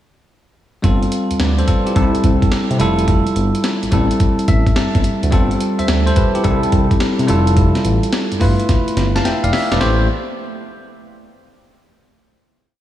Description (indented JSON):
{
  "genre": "R&B, new jack swing",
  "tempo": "107 BPM",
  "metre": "4/4",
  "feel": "swing 67% on 16ths",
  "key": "A minor",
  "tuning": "A4 = 441 Hz",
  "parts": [
    { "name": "bell-like tine electric piano", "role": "accompaniment", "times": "0.8-10.1 s", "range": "G3 to A5", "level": "-18 LUFS", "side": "equal", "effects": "slapback echo" },
    { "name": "smooth synth bass", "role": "bass", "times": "0.8-10.1 s", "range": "E1 to C3", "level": "-18 LUFS", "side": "equal", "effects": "none" },
    { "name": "breakbeat sampler-style drum kit", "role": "drums", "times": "0.8-10.0 s", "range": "hi-hat, kick drum, snare drum", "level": "-18 LUFS", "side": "equal", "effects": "none" }
  ],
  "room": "moderate lush hall reverb, RT60 2.6 s",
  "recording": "big arena sound",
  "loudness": "-13 LUFS",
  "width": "side -12 dB against mid",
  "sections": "0.8-9.8 verse; 9.8-12.1 final chord",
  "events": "tine electric piano fill 4.2-5.3; drum fill 8.7-9.8",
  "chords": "0.8 G9sus4; 2.0 C6; 2.8 Fmaj9; 3.9 Am7; 5.3 G9sus4; 6.4 C6; 7.3 Fmaj9; 8.4 G13; 9.8 Am7",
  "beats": "| 0.84 1.40 1.96 2.52 | 3.08 3.64 4.20 4.76 | 5.33 5.88 6.45 7.01 | 7.57 8.13 8.69 9.25 | 9.81"
}